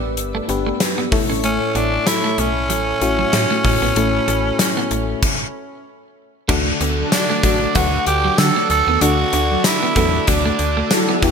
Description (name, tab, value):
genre	1980s-style pop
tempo	95 BPM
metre	4/4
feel	swing 55% on 16ths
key	D major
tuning	A4 = 440 Hz
part	FM electric piano	accompaniment	0.0-11.3 s	G2 to F#5	-23 LUFS	left 7 dB	chorus
part	chorused pulse-width pad	sustained chords	0.0-11.3 s	E4 to E6	-28 LUFS	right 2 dB	none
part	slap-like FM bass	bass	0.0-11.3 s	G1 to D3	-23 LUFS	equal	none
part	gated 80s drum kit	drums	0.2-11.3 s	crash cymbal, hi-hat, kick drum, snare drum, tambourine	-19 LUFS	left 1 dB	none
part	clean electric guitar	riff	0.3-11.3 s	F#3 to D4	-26 LUFS	right 4 dB	lush chorus, digital delay
part	growling tenor saxophone	melody	1.4-11.2 s	C#4 to A4	-20 LUFS	right 2 dB	digital delay
part	scooped high-gain guitar	accompaniment	6.5-11.3 s	D3 to E4	-27 LUFS	right 6 dB	distortion, ensemble chorus
part	mellow synth brass	stabs	7.0-11.3 s	F#3 to A4	-25 LUFS	equal	chorus, digital delay
room	moderate lush hall reverb, RT60 1.7 s, small room reverb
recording	bright 1980s-style digital production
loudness	-15 LUFS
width	side -6 dB against mid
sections	0.0-6.5 A section; 6.5-11.3 B section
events	stop 5.2-6.5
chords	0.0 G; 1.1 A; 6.5 D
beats	0.17 0.81 | 1.44 2.07 2.70 3.33 | 3.96 4.59 5.23 5.86 | 6.49 7.12 7.75 8.38 | 9.02 9.65 10.28 10.91